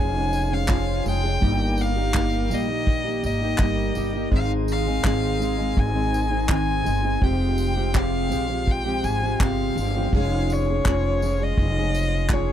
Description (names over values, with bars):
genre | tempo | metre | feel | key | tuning
acoustic pop | 83 BPM | 4/4 | straight | Ab major | A4 = 441 Hz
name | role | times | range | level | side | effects
warm violin | melody | 0.0-12.5 s | Db5 to Ab5 | -28 LUFS | left 2 dB | none
fingerpicked plugged-in steel-string acoustic guitar | accompaniment | 0.0-12.5 s | F2 to Ab4 | -26 LUFS | equal | double-tracked left and right
bright tonewheel organ | sustained chords | 0.0-12.5 s | C3 to G4 | -37 LUFS | right 2 dB | overdrive, stopped rotary speaker
upright bass | bass | 0.0-12.5 s | F1 to Bb1 | -25 LUFS | equal | none
unplugged drum kit | drums | 0.3-12.5 s | handclaps, kick drum, tambourine | -24 LUFS | equal | none
room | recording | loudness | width
little or no reverb | dry, close 1970s-style studio recording | -20 LUFS | side -10 dB against mid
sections
0.0-12.5 A section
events
none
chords
0.0 Db/F; 1.4 Eb/G; 4.3 Ab; 7.2 Fmadd9; 10.1 Db/F